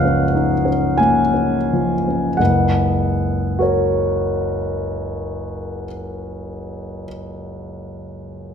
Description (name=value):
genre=classical, impressionist solo piano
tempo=50 BPM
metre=4/4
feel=rubato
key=Gb major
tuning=A4 = 439 Hz
part: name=warm concert grand piano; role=solo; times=0.0-8.5 s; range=Gb1 to Ab5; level=-18 LUFS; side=equal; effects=none
room=wet recital hall reverb, RT60 1.4 s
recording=minimal, uncompressed stereo recording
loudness=-16 LUFS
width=side -7 dB against mid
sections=0.0-2.4 A section; 2.4-7.2 B section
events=slowing down 0.0-2.4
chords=0.0 Ebm9/Gb; 2.4 Gb